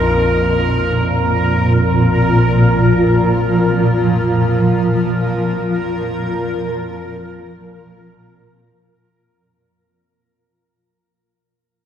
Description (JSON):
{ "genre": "dark ambient drone", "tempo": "free time", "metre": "none", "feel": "none", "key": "unclear", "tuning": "A4 = 440 Hz", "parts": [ { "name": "granular cloud pad", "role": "sustained chords", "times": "0.5-9.3 s", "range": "Bb2 to Bb4", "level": "-16 LUFS", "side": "equal", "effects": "built-in reverb" }, { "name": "organ-like drone", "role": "drone", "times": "0.0-9.5 s", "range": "Bb1 to F2", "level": "-20 LUFS", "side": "equal", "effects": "ensemble chorus, built-in reverb" }, { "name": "bubbling stepped-filter texture", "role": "texture", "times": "0.0-9.4 s", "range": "Bb4", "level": "-20 LUFS", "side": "equal", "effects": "chorus, built-in reverb, shimmer reverb" } ], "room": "wet huge ambient reverb, RT60 9.3 s", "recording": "none", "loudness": "-13 LUFS", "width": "side -9 dB against mid", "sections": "0.0-9.3 A section", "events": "fade-out 2.9-9.3", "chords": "0.0 Bb5" }